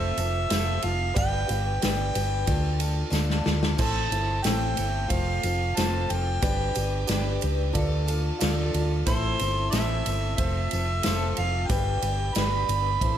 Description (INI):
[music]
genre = folk rock and heartland rock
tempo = 91 BPM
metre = 4/4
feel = straight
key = unclear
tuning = A4 = 443 Hz
[part]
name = mellow harmonica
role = melody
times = 0.0-13.2 s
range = C5 to B5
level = -30 LUFS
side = right 2 dB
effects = none
[part]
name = dark grand piano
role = accompaniment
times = 0.0-13.2 s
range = E4 to A5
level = -36 LUFS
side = right 6 dB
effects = none
[part]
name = picked twelve-string acoustic guitar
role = accompaniment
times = 0.0-13.2 s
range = A2 to C5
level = -33 LUFS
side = left 5 dB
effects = wide subtle chorus
[part]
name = tonewheel organ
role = sustained chords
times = 0.0-13.2 s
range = C4 to C5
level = -38 LUFS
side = right 1 dB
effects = slow rotary speaker
[part]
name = hollow-body short-scale fingered electric bass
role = bass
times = 0.0-13.2 s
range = F1 to D2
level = -27 LUFS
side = equal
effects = none
[part]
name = natural country drum kit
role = drums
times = 0.2-13.2 s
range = crash cymbal, kick drum, ride cymbal, snare drum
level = -29 LUFS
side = equal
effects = none
[part]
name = tambourine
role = percussion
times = 0.2-13.1 s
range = none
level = -42 LUFS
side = right 8 dB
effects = none
[sound]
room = light reverb, studio ambience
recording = none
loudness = -23 LUFS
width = side -10 dB against mid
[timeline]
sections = 0.0-13.2 A section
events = drum fill 3.1-3.8; grand piano fill 8.1-9.1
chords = 0.0 F; 1.2 G; 2.5 Dm; 3.8 Am; 5.1 F; 6.4 G; 7.8 Dm; 9.1 Am; 10.4 F; 11.7 G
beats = 0.51 | 1.16 1.82 2.48 3.14 | 3.80 4.46 5.11 5.77 | 6.43 7.09 7.75 8.41 | 9.07 9.73 10.39 11.05 | 11.71 12.37 13.03